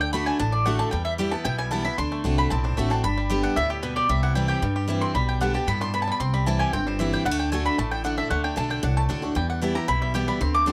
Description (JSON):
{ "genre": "bluegrass", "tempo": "228 BPM", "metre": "4/4", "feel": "straight", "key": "unclear", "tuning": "A4 = 442 Hz", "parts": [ { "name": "bluegrass banjo", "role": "melody", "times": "0.0-10.7 s", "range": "G3 to G4", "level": "-36 LUFS", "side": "equal", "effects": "none" }, { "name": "mandolin", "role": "melody", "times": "0.0-10.7 s", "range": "G4 to D6", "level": "-29 LUFS", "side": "equal", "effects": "none" }, { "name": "picked steel-string acoustic guitar", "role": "accompaniment", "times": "0.0-10.7 s", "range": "E2 to G4", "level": "-30 LUFS", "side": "equal", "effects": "none" }, { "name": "upright bass", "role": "bass", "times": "0.0-10.7 s", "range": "G1 to G2", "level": "-29 LUFS", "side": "equal", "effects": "none" } ], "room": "light reverb", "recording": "none", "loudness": "-24 LUFS", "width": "mono", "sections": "0.0-4.1 A section; 4.1-10.7 A section", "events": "mandolin solo 0.0-10.7", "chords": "0.0 D; 0.9 Em; 2.0 D7; 3.0 G; 4.1 C; 5.2 G/B; 6.2 C; 7.3 D; 9.4 Em" }